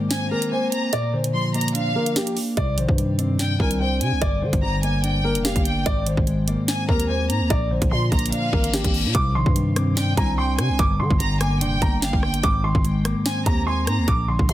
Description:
hip hop, drill; 146 BPM; 4/4; half-time; C minor; A4 = 440 Hz
dark grand piano; melody; 0.0-14.5 s; G4 to D6; -28 LUFS; equal; ping-pong delay
mellow electric guitar; accompaniment; 0.0-14.5 s; G2 to D4; -24 LUFS; equal; spring reverb
warm studio violin section; second line; 0.1-14.5 s; F5 to C6; -29 LUFS; equal; ping-pong delay
drill drum kit; drums; 0.1-14.5 s; hi-hat, kick drum, rim click, snare drum; -23 LUFS; equal
growling 808-style bass; bass; 2.6-14.5 s; F1 to D3; -24 LUFS; equal
reverse cymbal; sound effects; 8.5-9.1 s; -29 LUFS; left 6 dB
digital ambience; dense, heavily limited modern master; -19 LUFS; side -14 dB against mid
0.0-9.1 A section; 9.1-14.5 B section
break 0.0-2.6; reverse cymbal 8.5-9.1
0.0 Abadd9; 0.9 Bb; 2.6 Cmadd9; 4.2 Gm; 5.9 Abadd9; 7.5 Bb; 9.1 Cmadd9; 10.8 Gm; 12.4 Abadd9

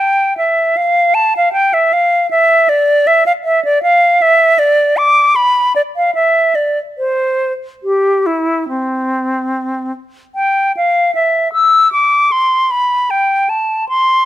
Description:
classical, baroque-style fantasia for unaccompanied flute; 70-79 BPM; 4/4; rubato; C major from 3.8 s; A4 = 439 Hz
silver concert flute; solo; 0.0-14.3 s; C4 to E6; -10 LUFS; equal
light reverb; close, detailed microphones; -10 LUFS; side -13 dB against mid
0.0-10.4 A section; 10.4-14.3 B section

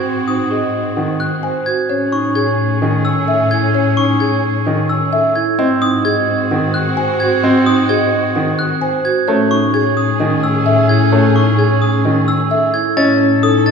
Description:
classical, minimalist pattern music; 130 BPM; 4/4; straight; A4 = 440 Hz
warm clarinet; second line; 0.0-13.7 s; B#3 to C#4; -24 LUFS; equal
rich chamber violin section; sustained chords; 0.0-13.7 s; B#3 to A4; -24 LUFS; left 3 dB
glockenspiel with hard plastic mallets; arpeggios; 0.0-13.7 s; C#6 to A6; -20 LUFS; right 2 dB
vibraphone with medium hard mallets; arpeggios; 0.0-13.7 s; B#3 to D#5; -20 LUFS; right 3 dB
warm studio double bass section; bass; 0.0-13.7 s; G#2 to A2; -20 LUFS; left 2 dB
folk marimba with medium mallets; melody; 0.5-13.7 s; G#4 to G#5; -21 LUFS; left 3 dB
clear baby grand piano; accompaniment; 1.0-13.3 s; D#3 to C#4; -19 LUFS; right 1 dB
wet scoring stage reverb, RT60 1.7 s; heard from further back in the room; -12 LUFS; side -6 dB against mid
0.0-13.0 A section
0.0 G#7; 1.9 Amaj7; 5.6 G#7; 9.3 Amaj7; 13.0 A

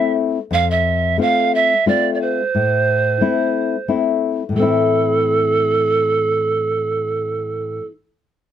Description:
andean folk, Andean ensemble; 90 BPM; 3/4; straight; A minor; A4 = 437 Hz
breathy reedy pan flute; melody; 0.0-7.9 s; A4 to F5; -17 LUFS; right 4 dB
nylon-string guitar; accompaniment; 0.0-7.9 s; F2 to F4; -19 LUFS; left 5 dB
little or no reverb; close, detailed microphones; -15 LUFS; side -10 dB against mid
0.0-4.6 A section; 4.6-8.5 B section
0.0 Am; 0.5 F; 2.5 Am

